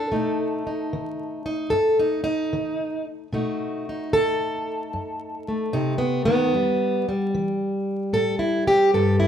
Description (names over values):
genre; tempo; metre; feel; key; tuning
acoustic country blues, solo or duo; 75 BPM; 4/4; swing 68% on 8ths; unclear; A4 = 440 Hz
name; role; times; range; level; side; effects
fingerpicked plugged-in steel-string acoustic guitar; solo; 0.0-9.3 s; E2 to A4; -21 LUFS; equal; none
room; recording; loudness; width
moderate large studio reverb, RT60 1.2 s; band playing live in one room, vinyl crackle; -21 LUFS; side -9 dB against mid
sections
0.0-9.3 A section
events
steel-string acoustic guitar solo 0.0-9.3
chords
0.1 B7; 6.5 Em; 8.1 Am7